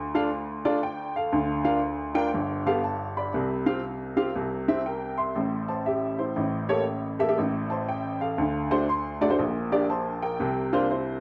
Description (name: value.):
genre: gospel.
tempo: 119 BPM.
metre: 4/4.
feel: swing 65% on 8ths.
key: unclear.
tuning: A4 = 440 Hz.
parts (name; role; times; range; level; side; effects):
warm upright piano; solo; 0.0-11.2 s; G1 to C6; -27 LUFS; equal; none.
room: moderate echo chamber reverb, RT60 1.6 s.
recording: none.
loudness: -27 LUFS.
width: mono.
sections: 0.0-11.2 A section.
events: upright piano fill 8.6-9.4.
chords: 0.0 Dm; 1.3 Bb/D; 2.3 Gadd9; 3.3 Csus4; 4.4 C; 5.4 N.C.; 6.4 A7b9; 7.4 N.C.; 8.4 D7; 9.4 Gm/Bb; 10.4 C9sus4.